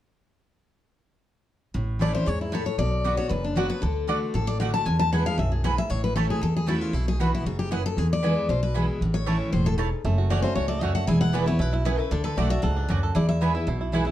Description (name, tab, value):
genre	bluegrass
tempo	232 BPM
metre	4/4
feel	straight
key	A major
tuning	A4 = 440 Hz
part	picked steel-string acoustic guitar	accompaniment	1.7-14.1 s	E2 to F#4	-26 LUFS	equal	none
part	upright bass	bass	1.7-14.1 s	E1 to E2	-28 LUFS	equal	none
part	picked steel-string acoustic guitar	melody	2.0-13.6 s	D4 to A5	-28 LUFS	left 4 dB	none
part	mandolin	stabs	2.0-14.0 s	A3 to A5	-31 LUFS	right 6 dB	none
part	bluegrass banjo	melody	10.1-14.1 s	A3 to A4	-32 LUFS	right 6 dB	none
room	moderate studio reverb, RT60 0.6 s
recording	dark, warm production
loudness	-22 LUFS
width	side -13 dB against mid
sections	1.8-14.1 A section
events	none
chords	1.8 A; 2.8 Bm; 3.8 D; 4.9 E; 5.9 A; 6.9 Bsus4; 8.0 E; 9.0 A; 10.0 F#m; 11.1 E; 12.1 D; 13.2 E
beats	| 1.75 2.01 2.27 2.53 | 2.79 3.05 3.31 3.57 | 3.83 4.09 4.35 4.61 | 4.87 5.12 5.38 5.64 | 5.90 6.16 6.42 6.68 | 6.94 7.20 7.46 7.72 | 7.97 8.23 8.49 8.75 | 9.01 9.27 9.53 9.79 | 10.05 10.30 10.56 10.82 | 11.08 11.34 11.60 11.86 | 12.12 12.38 12.64 12.89 | 13.15 13.41 13.67 13.93